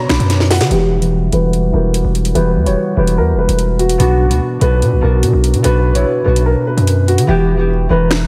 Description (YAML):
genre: hip hop, drill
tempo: 146 BPM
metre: 4/4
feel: half-time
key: unclear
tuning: A4 = 440 Hz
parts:
  - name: dark upright piano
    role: melody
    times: 0.0-8.3 s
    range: F#4 to B5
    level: -20 LUFS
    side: equal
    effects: low-pass filter, delay
  - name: concert harp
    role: accompaniment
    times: 0.0-8.3 s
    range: B2 to D5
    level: -20 LUFS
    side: equal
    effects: low-pass filter
  - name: warbly tape-like pad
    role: sustained chords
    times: 0.0-7.3 s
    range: G3 to F#5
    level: -27 LUFS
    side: equal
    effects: chorus, built-in reverb, low-pass filter
  - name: distorted 808-style bass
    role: bass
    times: 0.1-8.3 s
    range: E1 to D3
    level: -17 LUFS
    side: equal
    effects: distortion
  - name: drill drum kit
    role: drums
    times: 0.1-8.2 s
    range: finger snaps, hi-hat, snare drum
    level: -22 LUFS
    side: equal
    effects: none
room: moderate lush hall reverb, RT60 2.1 s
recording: dreamy mix soaked in reverb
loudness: -14 LUFS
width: mono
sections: 0.7-7.3 A section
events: drum fill 0.3-0.7; filter sweep 0.7-7.3; hi-hats muted 7.3-8.3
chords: 0.0 Bm; 0.7 Emadd9; 4.0 Bm; 7.3 Emadd9